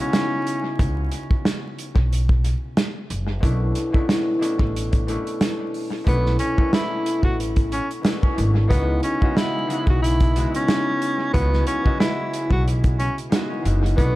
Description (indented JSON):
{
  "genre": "hip hop, boom-bap hip-hop",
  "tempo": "91 BPM",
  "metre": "4/4",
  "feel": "swing 57% on 16ths",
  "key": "C# minor",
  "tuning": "A4 = 440 Hz",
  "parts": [
    { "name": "warm tenor saxophone", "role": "melody", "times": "0.0-0.8, 6.1-14.2 s", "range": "B3 to F#4", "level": "-26 LUFS", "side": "equal", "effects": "high-pass filter, low-pass filter, analog delay" },
    { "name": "concert harp", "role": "accompaniment", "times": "0.0-14.2 s", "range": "B2 to D#5", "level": "-26 LUFS", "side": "left 1 dB", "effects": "high-pass filter, low-pass filter, analog delay" },
    { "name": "warm soul drum kit", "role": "drums", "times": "0.1-14.2 s", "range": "hi-hat, kick drum, snare drum", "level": "-22 LUFS", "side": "equal", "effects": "analog delay" },
    { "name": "upright bass", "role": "bass", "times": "0.8-14.2 s", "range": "F#1 to C#2", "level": "-22 LUFS", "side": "equal", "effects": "none" }
  ],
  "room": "small room ambience",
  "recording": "echo-heavy mix, vinyl crackle",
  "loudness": "-19 LUFS",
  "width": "side -17 dB against mid",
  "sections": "0.0-14.2 A section",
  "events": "none",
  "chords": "0.0 C#m11; 3.4 Bm11; 8.7 C#m11"
}